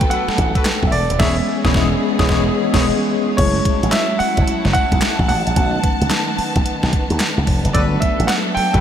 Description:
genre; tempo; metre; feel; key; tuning
R&B, new jack swing; 110 BPM; 4/4; swing 64% on 16ths; F# dorian; A4 = 440 Hz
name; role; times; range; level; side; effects
clear concert grand piano; melody; 0.0-8.8 s; C#5 to G5; -22 LUFS; right 2 dB; diffuse ambient delay
mellow tine electric piano; accompaniment; 0.0-8.8 s; F#3 to E4; -22 LUFS; left 1 dB; medium stereo tremolo
warm studio string section; sustained chords; 0.0-8.8 s; D#3 to A5; -25 LUFS; equal; none
slap bass with an envelope filter; bass; 0.0-8.8 s; D#1 to D#2; -19 LUFS; equal; none
crisp 8-bit digital drum machine; drums; 0.0-8.8 s; crash cymbal, handclaps, hi-hat, kick drum, snare drum; -19 LUFS; equal; overdrive
warm horn section; stabs; 0.1-2.9, 7.7-8.8 s; E4 to C#5; -27 LUFS; left 3 dB; diffuse ambient delay
room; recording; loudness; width
moderate huge ambient reverb, RT60 4.6 s; dreamy mix soaked in reverb; -14 LUFS; side -9 dB against mid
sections
0.0-3.4 A section; 3.4-8.8 B section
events
band accent 1.2-3.4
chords
0.0 Gmaj9 (rootless); 1.2 E6; 3.4 F#m7; 5.6 B7; 7.7 Gmaj9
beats
0.11 0.66 | 1.20 1.75 2.29 2.84 | 3.38 3.93 4.47 5.02 | 5.56 6.11 6.66 7.20 | 7.75 8.29

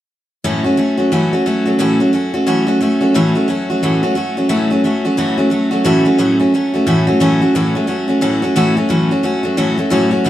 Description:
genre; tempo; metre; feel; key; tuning
rock; 177 BPM; 4/4; swing 61% on 8ths; A major; A4 = 438 Hz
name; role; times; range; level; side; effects
picked steel-string acoustic guitar; solo; 0.4-10.3 s; A2 to F#4; -12 LUFS; equal; none
room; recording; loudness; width
moderate stone room reverb, RT60 1.1 s; band playing live in one room; -12 LUFS; side -13 dB against mid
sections
0.4-5.8 A section; 5.8-10.3 B section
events
none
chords
0.4 A6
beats
| 0.43 0.77 1.11 1.45 | 1.79 2.12 2.46 2.80 | 3.14 3.48 3.82 4.16 | 4.50 4.83 5.17 5.51 | 5.85 6.19 6.53 6.87 | 7.21 7.54 7.88 8.22 | 8.56 8.90 9.23 9.57 | 9.91 10.25

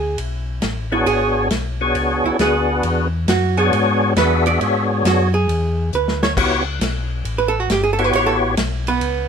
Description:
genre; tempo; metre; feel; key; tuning
soul jazz organ trio; 136 BPM; 4/4; swing 67% on 8ths; E mixolydian; A4 = 438 Hz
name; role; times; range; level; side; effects
archtop guitar, miked and amplified; accompaniment; 0.0-9.3 s; B3 to D5; -20 LUFS; right 5 dB; none
mellow tonewheel organ; bass; 0.0-9.3 s; G1 to G#2; -22 LUFS; left 1 dB; slow rotary speaker
warm soul drum kit; drums; 0.2-9.2 s; crash cymbal, hi-hat, kick drum, ride cymbal, snare drum; -25 LUFS; left 1 dB; none
percussive tonewheel organ; melody; 0.9-8.6 s; B3 to E5; -18 LUFS; left 1 dB; slow rotary speaker, overdrive, chorus vibrato
room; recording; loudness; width
light reverb; minimal, uncompressed stereo recording; -16 LUFS; side -6 dB against mid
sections
0.0-9.3 A section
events
hollow-body jazz guitar solo 0.0-9.3; drum fill 5.9-6.4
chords
0.0 E13; 6.4 A13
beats
0.19 0.63 | 1.07 1.51 1.95 2.40 | 2.84 3.28 3.72 4.16 | 4.60 5.05 5.49 5.93 | 6.37 6.81 7.25 7.70 | 8.14 8.58 9.02

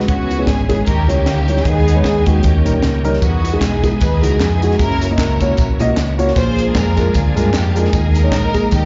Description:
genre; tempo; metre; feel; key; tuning
uptempo gospel; 153 BPM; 4/4; swing 56% on 8ths; unclear; A4 = 439 Hz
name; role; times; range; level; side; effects
bright tonewheel organ; sustained chords; 0.0-8.9 s; D#3 to A#4; -27 LUFS; equal; slow rotary speaker, overdrive, chorus vibrato
hollow-body short-scale fingered electric bass; bass; 0.0-8.9 s; F#1 to G2; -19 LUFS; equal; none
crisp fusion drum kit; drums; 0.0-8.8 s; hi-hat, kick drum, snare drum; -21 LUFS; equal; none
warm studio string section; melody; 0.1-8.9 s; A#3 to B#4; -24 LUFS; equal; slapback echo
dark grand piano; accompaniment; 0.1-8.9 s; A#2 to D#5; -22 LUFS; equal; slapback echo
tambourine and handclaps; percussion; 3.2-8.8 s; none; -35 LUFS; equal; none
room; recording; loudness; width
light reverb; live gig heard through the venue's PA, club reverb, nothing above 7.6 kHz; -15 LUFS; mono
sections
0.0-8.9 A section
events
none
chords
0.1 C#m7; 0.9 D#7b9; 1.7 G#m/D#; 2.4 D#7; 3.2 Emaj7; 4.8 F#7; 6.4 A#7; 7.9 D#sus4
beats
| 0.08 0.48 0.87 1.26 | 1.65 2.05 2.44 2.83 | 3.23 3.62 4.01 4.40 | 4.79 5.19 5.58 5.97 | 6.37 6.76 7.15 7.54 | 7.94 8.33 8.72

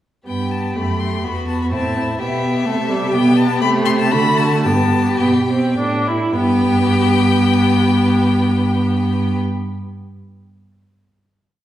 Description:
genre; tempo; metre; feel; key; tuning
quick classical-period movement for string quartet; 104-129 BPM; 3/4; rubato; G major; A4 = 440 Hz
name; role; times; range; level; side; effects
rich violin; melody; 0.3-9.4 s; E5 to C6; -23 LUFS; left 5 dB; none
clear violin; second line; 0.3-9.4 s; E4 to A4; -24 LUFS; left 3 dB; none
rich viola; accompaniment; 0.3-9.4 s; G3 to E4; -18 LUFS; equal; none
rich cello; bass; 0.3-9.4 s; E2 to D3; -19 LUFS; right 2 dB; none
room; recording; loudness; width
wet recital hall reverb, RT60 1.5 s; heard from further back in the room; -14 LUFS; side -12 dB against mid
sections
0.3-6.4 A section; 6.4-9.7 final chord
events
slowing down 2.4-6.4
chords
0.3 G; 1.3 E5; 1.7 Am7; 3.1 G/B; 3.6 Am7/C; 4.1 D; 4.7 G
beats
| 0.29 0.77 1.25 | 1.73 2.20 2.67 | 3.14 3.62 4.13 | 4.66 5.22 5.78 | 6.35 6.91 7.47 | 8.03 8.59 9.15

